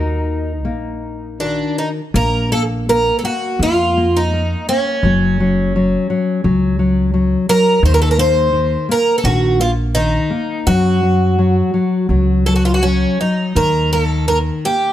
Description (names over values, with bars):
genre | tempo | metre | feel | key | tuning
fado-style ballad | 84 BPM | 4/4 | rubato | Bb harmonic minor | A4 = 439 Hz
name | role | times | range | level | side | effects
picked twelve-string acoustic guitar | melody | 0.0-14.9 s | Db4 to C5 | -17 LUFS | right 1 dB | none
nylon-string guitar | accompaniment | 0.0-14.9 s | Eb3 to Bb4 | -18 LUFS | left 3 dB | none
upright bass | bass | 0.0-14.5 s | Gb1 to Gb2 | -18 LUFS | right 1 dB | none
room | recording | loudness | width
light reverb | none | -13 LUFS | side -12 dB against mid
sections
0.0-2.1 A section; 2.1-14.9 B section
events
none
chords
0.0 Ebm; 2.1 Bb5; 5.0 Gb5; 7.8 Eb5; 10.7 Gb5; 13.6 Eb5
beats
0.65 1.40 | 2.15 2.88 3.60 4.33 | 5.04 5.75 6.45 7.15 | 7.84 8.54 9.24 9.95 | 10.67 11.38 12.10 12.83 | 13.56 14.29